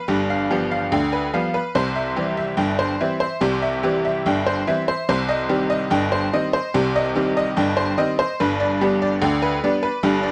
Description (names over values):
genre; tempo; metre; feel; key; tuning
ragtime piano; 72 BPM; 2/4; straight; unclear; A4 = 438 Hz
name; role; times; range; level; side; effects
tack piano; solo; 0.0-10.3 s; G1 to G5; -21 LUFS; equal; none
room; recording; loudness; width
light reverb; close, detailed microphones; -21 LUFS; mono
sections
0.0-10.3 A section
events
none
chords
0.0 G7; 1.8 C; 5.1 Cm; 8.4 G